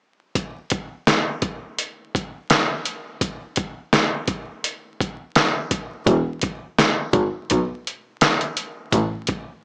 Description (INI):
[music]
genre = hip hop, boom-bap hip-hop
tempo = 84 BPM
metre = 4/4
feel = swing 61% on 16ths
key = E major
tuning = A4 = 438 Hz
[part]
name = trip hop sampler-style drum kit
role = drums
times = 0.4-9.5 s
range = hi-hat, kick drum, snare drum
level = -19 LUFS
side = equal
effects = none
[part]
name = bright double bass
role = bass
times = 6.1-9.0 s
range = E1 to B1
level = -19 LUFS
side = equal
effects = none
[sound]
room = light reverb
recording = vinyl crackle, small speaker sound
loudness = -20 LUFS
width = side -34 dB against mid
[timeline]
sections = 0.4-6.1 A section; 6.1-9.6 B section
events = none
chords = none